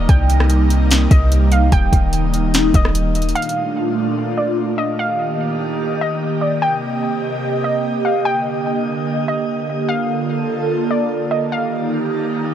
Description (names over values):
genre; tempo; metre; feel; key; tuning
hip hop, atmospheric cloud-rap; 147 BPM; 4/4; half-time; unclear; A4 = 442 Hz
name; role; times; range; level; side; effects
warbly dusty pluck; melody; 0.0-11.9 s; D5 to G5; -22 LUFS; equal; chorus, digital delay
airy breathy pad; sustained chords; 0.0-12.5 s; Bb2 to Eb5; -19 LUFS; right 1 dB; chorus, phaser, sidechain pumping
warm 808-style bass; bass; 0.0-3.3 s; Eb1 to C2; -15 LUFS; equal; none
smooth R&B drum kit; drums; 0.1-3.6 s; hi-hat, kick drum, rim click, snare drum; -17 LUFS; equal; overdrive
room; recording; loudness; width
light reverb; none; -15 LUFS; side -10 dB against mid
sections
0.0-3.4 A section; 3.4-12.5 B section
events
none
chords
0.1 Cm7; 1.7 Eb; 3.4 Bbmaj7; 5.0 Eb; 6.6 Cm7; 8.3 Ebmaj7; 9.9 Bbmaj7; 11.5 Eb